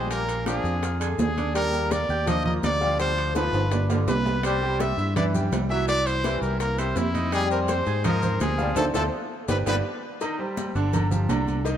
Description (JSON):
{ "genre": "latin, salsa", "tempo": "166 BPM", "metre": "4/4", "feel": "straight", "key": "unclear", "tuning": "A4 = 439 Hz", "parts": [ { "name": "bright trumpet", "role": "melody", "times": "0.0-9.8 s", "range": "E4 to E5", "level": "-28 LUFS", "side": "equal", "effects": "none" }, { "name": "brilliant trombone section", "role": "second line", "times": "0.0-9.8 s", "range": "C3 to A3", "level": "-30 LUFS", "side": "left 1 dB", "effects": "none" }, { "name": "bright concert grand piano", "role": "accompaniment", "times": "0.0-11.8 s", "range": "D3 to Ab6", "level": "-31 LUFS", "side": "right 3 dB", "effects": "none" }, { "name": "fingered electric bass", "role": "bass", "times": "0.0-11.8 s", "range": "G1 to Ab2", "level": "-27 LUFS", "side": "equal", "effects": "none" }, { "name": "bongos and cowbell", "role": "percussion", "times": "0.1-11.8 s", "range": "none", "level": "-37 LUFS", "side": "left 6 dB", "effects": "none" }, { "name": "congas", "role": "percussion", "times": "0.1-11.8 s", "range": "none", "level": "-32 LUFS", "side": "equal", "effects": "none" }, { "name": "maracas", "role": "percussion", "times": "0.1-11.8 s", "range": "none", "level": "-43 LUFS", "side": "left 6 dB", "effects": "none" }, { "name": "timbales and agogo bells", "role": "percussion", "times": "0.1-11.7 s", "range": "none", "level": "-33 LUFS", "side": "right 5 dB", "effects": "none" } ], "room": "moderate plate reverb, RT60 2.9 s", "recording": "heard from further back in the room", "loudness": "-22 LUFS", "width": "side -10 dB against mid", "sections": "0.0-10.2 A section; 10.2-11.8 B section", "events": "drum fill 3.4-4.4, 8.8-10.2; band accent 8.8-10.2", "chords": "0.1 Bb7; 1.6 Ebmaj7; 3.0 Dm7; 3.7 G7; 4.4 Cmaj7; 5.9 C7; 7.3 Fm7; 8.8 Dm7; 9.5 G; 10.2 Cm; 10.9 G5" }